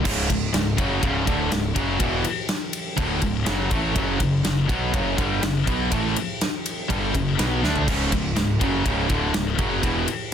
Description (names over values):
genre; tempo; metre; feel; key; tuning
heavy metal; 123 BPM; 4/4; straight; C# phrygian; A4 = 440 Hz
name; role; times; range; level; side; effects
distorted electric guitar; riff; 0.0-10.1 s; C#2 to D4; -27 LUFS; right 10 dB; overdrive
distorted electric guitar; riff; 0.0-10.1 s; C#2 to D4; -28 LUFS; equal; overdrive
heavy high-gain guitar; riff; 0.0-10.1 s; C#2 to D4; -26 LUFS; left 8 dB; distortion
fuzz picked electric bass; bass; 0.0-10.1 s; C#1 to D2; -28 LUFS; equal; overdrive
big rock drum kit; drums; 0.1-10.2 s; crash cymbal, kick drum, ride cymbal, snare drum, toms; -25 LUFS; equal; none
room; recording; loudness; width
little or no reverb; dense, heavily limited modern master; -20 LUFS; side -8 dB against mid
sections
0.1-10.3 A section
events
drum fill 7.6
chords
0.1 C#m; 4.0 F#5; 7.9 C#m